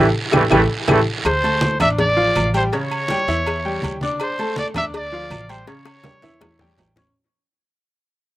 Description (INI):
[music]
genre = latin, salsa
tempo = 163 BPM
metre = 4/4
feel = straight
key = D minor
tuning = A4 = 440 Hz
[part]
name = mellow trombone section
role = melody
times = 0.0-1.0 s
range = E3 to A3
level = -19 LUFS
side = right 1 dB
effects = none
[part]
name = bright baby grand piano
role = accompaniment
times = 0.0-7.1 s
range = C#3 to D6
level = -22 LUFS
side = equal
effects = slapback echo
[part]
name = upright bass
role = bass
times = 0.0-7.1 s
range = A1 to E2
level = -24 LUFS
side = equal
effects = none
[part]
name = claves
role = percussion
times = 0.3-6.6 s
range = none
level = -29 LUFS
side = left 7 dB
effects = none
[part]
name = congas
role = percussion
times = 0.3-7.0 s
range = none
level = -25 LUFS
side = equal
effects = none
[part]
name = cowbell and bongos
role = percussion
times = 0.3-7.1 s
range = none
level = -27 LUFS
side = left 3 dB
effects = slapback echo
[part]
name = guiro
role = percussion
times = 0.3-7.2 s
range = none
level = -32 LUFS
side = right 5 dB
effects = none
[part]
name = timbales and agogo bells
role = percussion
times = 0.3-7.1 s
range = none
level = -29 LUFS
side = right 7 dB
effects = none
[part]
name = clear trumpet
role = melody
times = 1.3-6.9 s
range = C5 to E5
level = -21 LUFS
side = equal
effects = none
[sound]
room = little or no reverb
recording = recorded outdoors, with no room sound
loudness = -16 LUFS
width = side -15 dB against mid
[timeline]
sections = 0.0-1.3 A section; 1.3-7.2 B section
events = band accent 0.0-1.3; fade-out 1.3-7.2; drum fill 5.7-7.2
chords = 0.0 A5; 1.3 Dm7; 2.7 C#dim; 4.2 Dm7; 5.7 A7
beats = 0.15 0.51 0.88 | 1.25 1.62 1.99 2.36 | 2.73 3.10 3.46 3.83 | 4.20 4.57 4.94 5.31 | 5.68 6.05 6.42 6.78